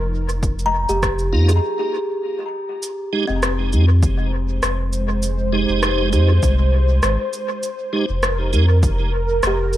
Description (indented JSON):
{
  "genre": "ambient dub",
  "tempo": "100 BPM",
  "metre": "4/4",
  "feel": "swing 54% on 16ths",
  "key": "F minor",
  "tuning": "A4 = 440 Hz",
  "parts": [
    { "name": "warm analog pad", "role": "sustained chords", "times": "0.0-9.8 s", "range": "F3 to C5", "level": "-25 LUFS", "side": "right 1 dB", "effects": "chorus" },
    { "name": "warm sub bass", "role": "bass", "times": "0.0-9.8 s", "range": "F1 to F2", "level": "-18 LUFS", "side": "equal", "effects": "none" },
    { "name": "electronic shaker and rim click", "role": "drums", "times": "0.3-9.8 s", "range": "none", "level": "-25 LUFS", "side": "left 1 dB", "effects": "dub echo" },
    { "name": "electronic kick drum", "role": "drums", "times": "0.4-9.0 s", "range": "none", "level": "-24 LUFS", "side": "equal", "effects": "overdrive" },
    { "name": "kalimba", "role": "arpeggios", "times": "0.7-4.5, 9.5-9.8 s", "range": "C4 to Bb5", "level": "-24 LUFS", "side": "left 1 dB", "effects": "tape echo" },
    { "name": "tonewheel organ", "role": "stabs", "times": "1.3-8.7 s", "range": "Ab3 to G4", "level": "-25 LUFS", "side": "right 4 dB", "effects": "chorus vibrato, slow rotary speaker, dub echo" }
  ],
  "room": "light reverb",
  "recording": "echo-heavy mix",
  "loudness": "-16 LUFS",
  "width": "side -13 dB against mid",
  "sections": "0.0-2.8 A section; 2.8-9.8 B section",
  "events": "break 1.6-2.8",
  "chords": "0.0 Fm11",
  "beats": "| 0.43 1.03 1.63 2.23 | 2.83 3.43 4.03 4.63 | 5.23 5.83 6.43 7.03 | 7.63 8.23 8.83 9.43"
}